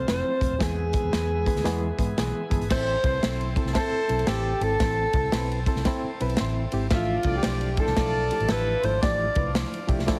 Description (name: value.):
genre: uptempo 1960s-style soul.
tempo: 114 BPM.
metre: 4/4.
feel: swing 63% on 8ths.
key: A minor.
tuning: A4 = 441 Hz.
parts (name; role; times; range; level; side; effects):
breathy alto saxophone; melody; 0.0-9.5 s; F4 to D5; -30 LUFS; equal; none.
vibraphone with soft mallets; second line; 0.0-9.5 s; G#3 to D6; -40 LUFS; equal; none.
barky reed electric piano; accompaniment; 0.0-10.2 s; E3 to A5; -34 LUFS; equal; overdrive, fast tremolo.
bright tonewheel organ; sustained chords; 0.0-10.2 s; E3 to A4; -42 LUFS; equal; overdrive, slow rotary speaker.
vintage muted fingered electric bass; bass; 0.0-10.1 s; D#1 to G#2; -31 LUFS; equal; none.
natural country drum kit; drums; 0.1-10.2 s; crash cymbal, hi-hat, kick drum, ride cymbal, snare drum; -30 LUFS; equal; none.
warm horn section; second line; 2.7-8.9 s; E3 to E5; -39 LUFS; equal; analog delay.
room: light reverb, small room reverb.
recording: heavily compressed radio sound.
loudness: -25 LUFS.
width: mono.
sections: 0.0-2.7 A section; 2.7-10.2 B section.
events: reed electric piano fill 1.7-2.7, 6.1-6.9, 9.6-10.2.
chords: 0.0 F; 0.6 E; 2.7 Am; 6.9 Dmadd9.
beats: 0.07 | 0.60 1.13 1.65 2.18 | 2.70 3.23 3.76 4.28 | 4.81 5.33 5.86 6.39 | 6.92 7.44 7.97 8.50 | 9.02 9.55 10.08.